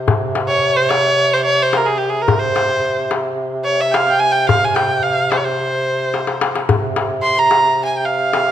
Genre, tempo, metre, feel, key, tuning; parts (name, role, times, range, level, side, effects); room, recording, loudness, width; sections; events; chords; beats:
Arabic maqam ensemble; 109 BPM; 4/4; straight; C maqam hijaz; A4 = 441 Hz
warm duduk; drone; 0.0-8.5 s; C3; -22 LUFS; right 1 dB
darbuka; percussion; 0.1-8.5 s; -19 LUFS; left 4 dB
clear erhu; melody; 0.5-8.5 s; G4 to C6; -15 LUFS; right 1 dB
moderate scoring stage reverb, RT60 1.7 s; -14 LUFS; side -10 dB against mid
0.0-8.5 A section
drum fill 6.1-6.7
| 0.08 0.63 1.18 1.73 | 2.28 2.83 3.38 3.93 | 4.48 5.04 5.59 6.14 | 6.69 7.24 7.79 8.34